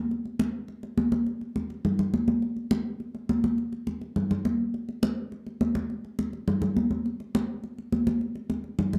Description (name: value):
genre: jazz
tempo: 207 BPM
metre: 4/4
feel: straight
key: none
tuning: none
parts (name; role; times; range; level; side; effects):
- congas; percussion; 0.1-9.0 s; none; -28 LUFS; equal; none
room: moderate club reverb, RT60 0.7 s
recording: none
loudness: -29 LUFS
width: mono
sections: 0.0-9.0 A section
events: none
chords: none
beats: | 0.11 0.40 0.69 0.98 | 1.26 1.55 1.84 2.13 | 2.42 2.71 3.00 3.29 | 3.58 3.87 4.16 4.45 | 4.74 5.03 5.32 5.61 | 5.89 6.18 6.47 6.76 | 7.05 7.34 7.63 7.92 | 8.21 8.49 8.78